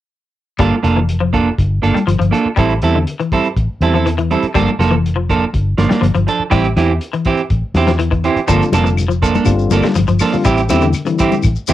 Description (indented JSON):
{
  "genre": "afrobeat",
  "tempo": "122 BPM",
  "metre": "4/4",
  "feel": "straight",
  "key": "G dorian",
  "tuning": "A4 = 440 Hz",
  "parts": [
    { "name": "electric guitar at the edge of break-up", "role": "arpeggios", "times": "0.6-11.2 s", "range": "D3 to G3", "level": "-20 LUFS", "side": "left 6 dB", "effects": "ensemble chorus" },
    { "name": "clean electric guitar", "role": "stabs", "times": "0.6-11.7 s", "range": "E3 to A4", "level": "-15 LUFS", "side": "right 5 dB", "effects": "none" },
    { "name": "vintage muted fingered electric bass", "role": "bass", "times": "0.6-11.7 s", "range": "F1 to E2", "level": "-16 LUFS", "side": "left 1 dB", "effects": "none" },
    { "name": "warm soul drum kit", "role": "drums", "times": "0.6-11.7 s", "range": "hi-hat, kick drum, snare drum", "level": "-21 LUFS", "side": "left 1 dB", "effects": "cassette tape" },
    { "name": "tine electric piano", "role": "accompaniment", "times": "8.5-11.5 s", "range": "D3 to F4", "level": "-19 LUFS", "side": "left 5 dB", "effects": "overdrive" },
    { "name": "congas", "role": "percussion", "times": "8.5-11.7 s", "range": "none", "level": "-23 LUFS", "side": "left 8 dB", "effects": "none" },
    { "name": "shekere", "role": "percussion", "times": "8.5-11.7 s", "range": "none", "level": "-27 LUFS", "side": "left 6 dB", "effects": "none" },
    { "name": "claves", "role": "percussion", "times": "8.7-11.6 s", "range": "none", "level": "-28 LUFS", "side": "left 8 dB", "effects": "none" }
  ],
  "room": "light reverb",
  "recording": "home recording on cassette",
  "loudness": "-12 LUFS",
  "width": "side -13 dB against mid",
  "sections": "0.6-11.7 A section",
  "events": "none",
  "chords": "0.6 Gm9; 2.6 Am7; 4.5 Gm9; 6.5 Am7; 8.5 Gm9; 10.5 Am7"
}